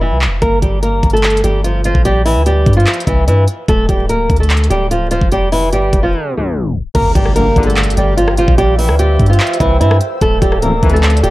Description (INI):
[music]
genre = hip hop, trap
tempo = 147 BPM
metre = 4/4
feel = half-time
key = G dorian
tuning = A4 = 437 Hz
[part]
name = flamenco guitar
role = melody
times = 0.0-11.3 s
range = E3 to Bb4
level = -15 LUFS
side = equal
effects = low-pass filter, tape echo
[part]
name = long sustained 808-style bass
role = bass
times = 0.0-11.3 s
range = D1 to G2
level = -14 LUFS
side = equal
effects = none
[part]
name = trap drum kit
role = drums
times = 0.2-11.3 s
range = crash cymbal, handclaps, hi-hat, kick drum, rim click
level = -16 LUFS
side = equal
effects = overdrive
[part]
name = glassy FM pad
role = sustained chords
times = 7.3-11.3 s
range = G4 to E6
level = -23 LUFS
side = right 1 dB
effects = ensemble chorus, built-in reverb
[part]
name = impact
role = sound effects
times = 6.9-8.6 s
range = none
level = -22 LUFS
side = equal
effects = none
[part]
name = mellow brass ensemble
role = stabs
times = 7.4-7.9, 10.6-11.1 s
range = A1 to E3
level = -20 LUFS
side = left 4 dB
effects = none
[sound]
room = digital ambience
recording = vinyl crackle, tape stop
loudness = -10 LUFS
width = side -18 dB against mid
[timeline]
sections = 0.0-7.0 A section; 7.0-11.3 B section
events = break 0.0-0.4, 6.1-7.0; tape stop 6.1-7.0; impact 7.0-8.6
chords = 0.4 Gm7; 2.1 C; 3.7 Dm; 5.3 Fsus2; 7.0 Gm7; 8.6 C; 10.2 Dmadd9